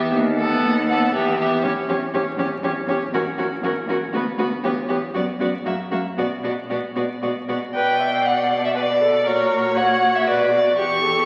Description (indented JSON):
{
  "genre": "quick classical-period movement for string quartet",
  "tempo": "119 BPM",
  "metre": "3/4",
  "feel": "straight",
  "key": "B minor",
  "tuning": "A4 = 439 Hz",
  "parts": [
    { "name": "rich violin", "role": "melody", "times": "0.0-11.3 s", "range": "A#4 to C#6", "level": "-24 LUFS", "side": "equal", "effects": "none" },
    { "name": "warm violin", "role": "second line", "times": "0.0-11.3 s", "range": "F#4 to D5", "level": "-27 LUFS", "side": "equal", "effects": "none" },
    { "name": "rich viola", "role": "accompaniment", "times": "0.0-11.3 s", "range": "A#3 to E5", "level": "-28 LUFS", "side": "equal", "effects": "none" },
    { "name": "rich cello", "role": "bass", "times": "0.0-11.3 s", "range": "D2 to B2", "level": "-29 LUFS", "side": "equal", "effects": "none" }
  ],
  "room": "wet concert hall reverb, RT60 1.8 s",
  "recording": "very old 78 rpm record, vinyl crackle",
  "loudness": "-21 LUFS",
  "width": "mono",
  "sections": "0.0-7.7 A section; 7.7-11.3 A section",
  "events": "none",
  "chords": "0.1 B7/D#; 1.1 Em; 1.6 C#dim/E; 4.1 Bm; 4.6 C#m7 (rootless); 5.2 Bm; 5.7 F#7; 6.2 Bm; 9.3 F#/A#; 10.3 Bm",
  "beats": "| 0.14 0.64 1.14 | 1.64 2.13 2.63 | 3.13 3.64 4.14 | 4.65 5.15 5.66 | 6.18 6.70 7.23 | 7.75 8.26 8.76 | 9.27 9.77 10.27 | 10.78"
}